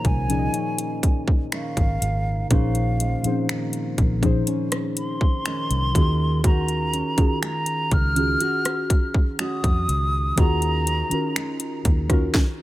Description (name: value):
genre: contemporary R&B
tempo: 61 BPM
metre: 4/4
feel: straight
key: Bb minor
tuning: A4 = 440 Hz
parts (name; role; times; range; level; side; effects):
- hollow concert flute; melody; 0.0-11.9 s; F5 to F6; -27 LUFS; equal; digital delay
- muted felt-like synth keys; accompaniment; 0.0-12.4 s; Bb2 to Eb5; -26 LUFS; left 1 dB; chorus
- nylon-string guitar; arpeggios; 0.0-12.6 s; Bb2 to Gb4; -31 LUFS; right 1 dB; none
- vintage muted fingered electric bass; bass; 0.0-12.3 s; Ab1 to F2; -24 LUFS; equal; none
- trap drum kit; drums; 0.0-12.6 s; finger snaps, hi-hat, kick drum, rim click, snare drum; -21 LUFS; equal; none
room: little or no reverb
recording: none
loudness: -20 LUFS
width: side -16 dB against mid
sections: 0.0-12.6 A section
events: none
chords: 0.0 Bbm11; 6.0 Ebm11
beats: 0.54 1.52 | 2.51 3.49 4.47 5.46 | 6.44 7.42 8.41 9.39 | 10.38 11.36 12.34